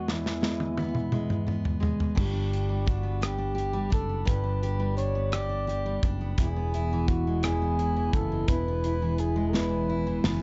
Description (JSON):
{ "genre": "six-eight pop ballad", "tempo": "57 BPM (dotted quarters)", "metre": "6/8", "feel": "straight", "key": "unclear", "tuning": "A4 = 440 Hz", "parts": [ { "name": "breathy flugelhorn", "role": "melody", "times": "0.0-10.3 s", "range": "E4 to D5", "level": "-36 LUFS", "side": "equal", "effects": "analog delay" }, { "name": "picked steel-string acoustic guitar", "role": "accompaniment", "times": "0.0-10.4 s", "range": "E2 to G4", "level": "-33 LUFS", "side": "equal", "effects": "none" }, { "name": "modern studio drum kit", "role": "drums", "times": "0.1-10.4 s", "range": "crash cymbal, hi-hat, kick drum, rim click, snare drum, toms", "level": "-31 LUFS", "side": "equal", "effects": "vintage 12-bit sampler grit" }, { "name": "fingered electric bass", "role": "bass", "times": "2.2-10.4 s", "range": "E1 to G1", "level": "-32 LUFS", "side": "equal", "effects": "none" } ], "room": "light reverb", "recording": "dark, warm production, nothing above 7.7 kHz", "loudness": "-28 LUFS", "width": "mono", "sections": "0.0-2.2 A section; 2.2-10.4 B section", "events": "drum fill 0.1-2.2, 9.5-10.4", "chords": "0.0 E; 2.2 G; 6.4 E", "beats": "| 0.06 1.12 | 2.17 3.22 | 4.28 5.33 | 6.38 7.43 | 8.48 9.53" }